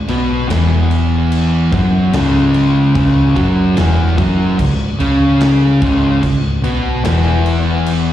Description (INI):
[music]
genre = stoner and doom metal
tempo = 73 BPM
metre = 4/4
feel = straight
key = C# minor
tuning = A4 = 440 Hz
[part]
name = hollow-body short-scale picked electric bass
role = bass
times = 0.0-8.1 s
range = C#1 to C#2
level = -17 LUFS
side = equal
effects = overdrive
[part]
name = distorted electric guitar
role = riff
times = 0.1-8.1 s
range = C#2 to C#4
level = -24 LUFS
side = right 2 dB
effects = distortion, slapback echo
[part]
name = thick fuzz guitar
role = riff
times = 0.1-8.1 s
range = C#2 to C#4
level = -14 LUFS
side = left 3 dB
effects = distortion
[part]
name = thick fuzz guitar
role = riff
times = 0.1-8.1 s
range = C#2 to C#4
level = -18 LUFS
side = right 5 dB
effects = distortion
[part]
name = big rock drum kit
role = drums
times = 0.1-8.1 s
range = crash cymbal, kick drum, snare drum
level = -23 LUFS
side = equal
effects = none
[sound]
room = little or no reverb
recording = live gig heard through the venue's PA, recital hall reverb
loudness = -11 LUFS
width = side -12 dB against mid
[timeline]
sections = 0.0-8.1 A section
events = none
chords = 0.0 C#m